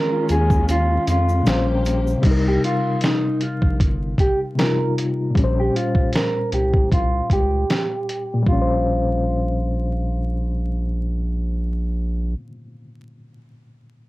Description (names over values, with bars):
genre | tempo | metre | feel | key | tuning
lo-fi hip hop | 77 BPM | 4/4 | swing 56% on 16ths | Bb dorian | A4 = 440 Hz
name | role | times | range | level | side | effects
mellow electric guitar | melody | 0.0-10.8 s | Eb4 to Bb4 | -24 LUFS | right 1 dB | low-pass filter, cassette tape, tape echo
barky reed electric piano | accompaniment | 0.0-14.1 s | Bb2 to C5 | -24 LUFS | left 2 dB | overdrive, fast tremolo, cassette tape, low-pass filter
warm studio string section | sustained chords | 0.0-2.2 s | Eb3 to G4 | -26 LUFS | equal | low-pass filter
round analog bass | bass | 0.3-12.3 s | G1 to F2 | -22 LUFS | equal | none
lo-fi sampler-style drum kit | drums | 0.3-8.7 s | crash cymbal, hi-hat, kick drum, snare drum | -21 LUFS | equal | cassette tape
tube shaker | percussion | 0.3-2.2 s | none | -46 LUFS | right 7 dB | none
room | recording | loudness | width
light reverb | home recording on cassette, vinyl crackle | -18 LUFS | side -18 dB against mid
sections
0.0-2.2 A section; 2.2-8.5 B section; 8.5-11.6 C section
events
kick muted 0.7-2.2; filter sweep 2.2-8.5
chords
0.0 Eb9sus4; 1.5 Bbm69; 2.2 Cm7; 5.4 Bbm69